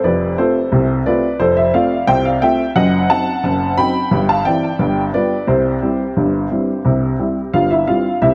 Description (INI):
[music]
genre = ragtime piano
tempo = 88 BPM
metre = 2/4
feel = straight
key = C major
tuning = A4 = 440 Hz
[part]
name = clear upright piano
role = solo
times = 0.0-8.3 s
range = F1 to B5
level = -16 LUFS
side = equal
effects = tape echo
[sound]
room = moderate plate reverb, RT60 2.2 s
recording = echo-heavy mix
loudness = -16 LUFS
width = mono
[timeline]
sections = 0.0-8.2 A section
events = none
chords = 0.0 F; 2.8 F#dim7; 4.1 C/G; 4.8 G7; 5.5 C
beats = | 0.05 0.73 | 1.40 2.08 | 2.76 3.44 | 4.12 4.80 | 5.49 6.17 | 6.86 7.54 | 8.23